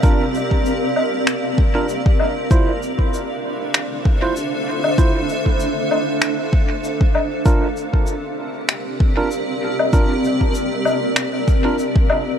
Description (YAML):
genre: ambient dub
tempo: 97 BPM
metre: 4/4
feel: swing 55% on 16ths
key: unclear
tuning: A4 = 440 Hz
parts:
  - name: granular cloud pad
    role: sustained chords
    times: 0.0-12.4 s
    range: C4 to F5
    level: -21 LUFS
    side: equal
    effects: built-in reverb
  - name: bright tine electric piano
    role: stabs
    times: 0.0-11.8 s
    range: D4 to C5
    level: -26 LUFS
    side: right 3 dB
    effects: dub echo
  - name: electronic kick drum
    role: drums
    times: 0.0-12.1 s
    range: none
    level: -16 LUFS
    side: equal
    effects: overdrive
  - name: shaker, woodblock and finger snaps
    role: drums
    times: 0.0-12.2 s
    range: none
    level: -23 LUFS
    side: left 2 dB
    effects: dub echo
room: light reverb, studio reverb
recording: none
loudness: -16 LUFS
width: side -8 dB against mid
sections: 0.0-12.4 A section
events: none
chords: 0.0 C7sus4; 2.5 Dm7; 7.5 C7sus4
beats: | 0.03 0.65 1.27 1.89 | 2.51 3.13 3.75 4.36 | 4.98 5.60 6.22 6.84 | 7.46 8.07 8.69 9.31 | 9.93 10.55 11.17 11.79